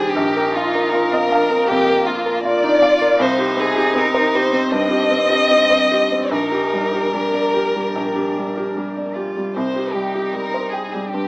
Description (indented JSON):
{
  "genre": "neoclassical piano and strings",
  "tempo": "73-80 BPM",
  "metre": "4/4",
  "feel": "rubato",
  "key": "C minor",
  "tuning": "A4 = 441 Hz",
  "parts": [
    { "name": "rich chamber violin section", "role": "melody", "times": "0.0-11.3 s", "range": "F4 to Eb5", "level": "-18 LUFS", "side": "left 1 dB", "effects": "none" },
    { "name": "rich cello", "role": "second line", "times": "0.0-11.3 s", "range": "Bb3 to F4", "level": "-24 LUFS", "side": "right 1 dB", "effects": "none" },
    { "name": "felt-muted upright piano", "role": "accompaniment", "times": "0.0-11.3 s", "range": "Bb1 to G5", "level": "-20 LUFS", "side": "equal", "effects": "none" },
    { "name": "concert harp", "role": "arpeggios", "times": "0.0-11.3 s", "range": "C4 to Bb5", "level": "-29 LUFS", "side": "left 1 dB", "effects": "none" }
  ],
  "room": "moderate studio reverb, RT60 0.6 s",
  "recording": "rough home demo mix, small speaker sound",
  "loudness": "-15 LUFS",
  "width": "side -25 dB against mid",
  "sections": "0.0-11.3 A section",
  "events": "none",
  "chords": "0.1 Bbsus4; 3.2 Cm; 6.3 Gm/Bb; 9.5 Cm"
}